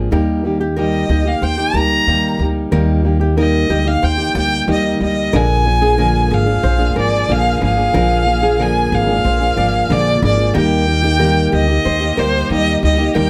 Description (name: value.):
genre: acoustic pop.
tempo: 92 BPM.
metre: 4/4.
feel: straight.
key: Bb mixolydian.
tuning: A4 = 442 Hz.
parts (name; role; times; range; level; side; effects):
fingerpicked plugged-in steel-string acoustic guitar; accompaniment; 0.0-13.3 s; Bb2 to Ab4; -20 LUFS; equal; none.
upright bass; bass; 0.0-13.3 s; Ab1 to Eb2; -20 LUFS; equal; none.
nylon-string guitar; arpeggios; 0.1-13.3 s; G4 to D5; -25 LUFS; equal; none.
rich violin; melody; 0.8-13.3 s; C5 to Bb5; -20 LUFS; equal; none.
warm studio string section; sustained chords; 5.3-13.3 s; D3 to Ab4; -31 LUFS; equal; none.
room: moderate small room ambience, RT60 0.5 s.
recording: none.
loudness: -15 LUFS.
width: mono.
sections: 0.0-5.3 A section; 5.3-13.3 B section.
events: none.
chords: 0.1 Eb; 5.3 Bb7; 10.5 Eb.